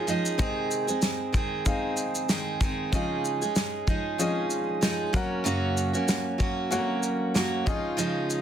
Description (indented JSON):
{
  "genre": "acoustic pop",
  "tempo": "95 BPM",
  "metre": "4/4",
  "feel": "swing 55% on 16ths",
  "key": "Db major",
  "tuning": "A4 = 440 Hz",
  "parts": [
    { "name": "picked steel-string acoustic guitar", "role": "accompaniment", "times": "0.0-8.4 s", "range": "Gb2 to Ab4", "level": "-27 LUFS", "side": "right 2 dB", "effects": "none" },
    { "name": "warm baby grand piano", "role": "accompaniment", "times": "0.0-8.4 s", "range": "C4 to Gb5", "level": "-34 LUFS", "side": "left 4 dB", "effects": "none" },
    { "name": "natural country drum kit", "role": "drums", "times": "0.1-8.4 s", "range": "kick drum, shaker, snare drum", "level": "-28 LUFS", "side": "equal", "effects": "none" }
  ],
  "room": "moderate studio reverb, RT60 0.6 s",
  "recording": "dense, heavily limited modern master",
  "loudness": "-25 LUFS",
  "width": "side -9 dB against mid",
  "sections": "0.0-8.4 A section",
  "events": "none",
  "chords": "0.4 Ab/C; 2.9 Dbadd9; 5.1 Gb; 7.7 Dbadd9"
}